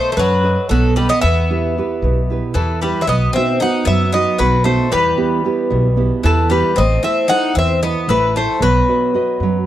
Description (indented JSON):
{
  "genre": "greek folk, Greek bouzouki band",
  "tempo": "227 BPM (eighths)",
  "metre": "7/8",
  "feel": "straight",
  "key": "E harmonic minor",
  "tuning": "A4 = 440 Hz",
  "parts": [
    { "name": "Greek bouzouki", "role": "melody", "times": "0.0-9.7 s", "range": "A4 to F#5", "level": "-18 LUFS", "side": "left 1 dB", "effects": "none" },
    { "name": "Greek bouzouki", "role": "second line", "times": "0.0-9.7 s", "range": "E3 to D#4", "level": "-22 LUFS", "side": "left 4 dB", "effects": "none" },
    { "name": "nylon-string guitar", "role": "accompaniment", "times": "0.0-9.7 s", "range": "B2 to D#5", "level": "-20 LUFS", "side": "right 6 dB", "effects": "none" },
    { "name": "upright bass", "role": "bass", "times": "0.2-9.7 s", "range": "A1 to F#2", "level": "-18 LUFS", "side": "equal", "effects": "none" }
  ],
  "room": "little or no reverb",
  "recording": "dry, close 1970s-style studio recording",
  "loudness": "-13 LUFS",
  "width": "side -12 dB against mid",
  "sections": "0.0-3.1 A section; 3.1-9.7 B section",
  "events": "none",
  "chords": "0.0 B7; 1.2 Em; 3.1 B; 4.9 Em; 6.8 Am; 8.6 B"
}